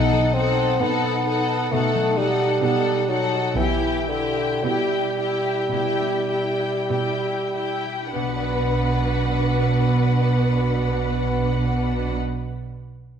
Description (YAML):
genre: classical, slow romantic movement for symphony orchestra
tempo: 46-67 BPM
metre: 4/4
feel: rubato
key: B minor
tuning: A4 = 440 Hz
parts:
  - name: warm studio violin section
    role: melody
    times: 0.0-12.2 s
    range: F#5 to G5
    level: -30 LUFS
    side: left 4 dB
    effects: none
  - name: warm studio violin section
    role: second line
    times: 0.0-12.2 s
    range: G4 to B4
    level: -28 LUFS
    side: left 4 dB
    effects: none
  - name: dark studio viola section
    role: accompaniment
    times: 0.0-12.1 s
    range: D4 to E4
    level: -30 LUFS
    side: equal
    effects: none
  - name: mellow bassoon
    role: accompaniment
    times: 0.0-12.2 s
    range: D3 to D#4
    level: -24 LUFS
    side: right 2 dB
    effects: none
  - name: concert harp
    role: arpeggios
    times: 0.0-12.4 s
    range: B2 to G5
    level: -30 LUFS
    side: left 6 dB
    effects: none
  - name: rich studio cello section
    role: bass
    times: 0.0-12.2 s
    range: B2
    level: -28 LUFS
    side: right 3 dB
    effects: none
  - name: warm studio double bass section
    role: bass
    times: 0.0-12.2 s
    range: B1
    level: -24 LUFS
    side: right 2 dB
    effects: none
room: wet scoring stage reverb, RT60 1.5 s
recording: none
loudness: -19 LUFS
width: side -8 dB against mid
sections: 0.0-8.2 A section; 8.2-12.8 B section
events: slowing down 0.0-8.2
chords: 0.0 B7; 3.6 Em/B; 8.2 Bm